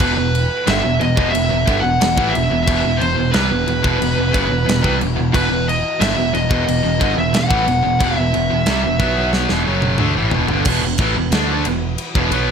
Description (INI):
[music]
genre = heavy metal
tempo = 90 BPM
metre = 4/4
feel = straight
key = E minor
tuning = A4 = 440 Hz
[part]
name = high-gain lead guitar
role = melody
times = 0.0-9.3 s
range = B4 to F#5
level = -20 LUFS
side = equal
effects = distortion
[part]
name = dark symphonic string section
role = sustained chords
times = 0.0-12.5 s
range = B2 to B4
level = -33 LUFS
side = equal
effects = none
[part]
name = distorted electric guitar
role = riff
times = 0.0-12.5 s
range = E2 to D4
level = -22 LUFS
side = left 12 dB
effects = overdrive
[part]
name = tight distorted guitar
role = riff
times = 0.0-12.5 s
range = E2 to D4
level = -21 LUFS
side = right 13 dB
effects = distortion
[part]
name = modern bright picked electric bass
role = bass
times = 0.0-12.5 s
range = E1 to D2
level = -22 LUFS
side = equal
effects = none
[part]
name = tight metal drum kit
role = drums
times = 0.0-12.5 s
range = crash cymbal, kick drum, ride cymbal, snare drum, toms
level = -21 LUFS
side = equal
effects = none
[sound]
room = light reverb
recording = none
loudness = -14 LUFS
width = side -7 dB against mid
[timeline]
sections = 0.0-10.7 A section; 10.7-12.5 B section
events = drum fill 9.3-10.7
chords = 0.0 Em; 10.7 E5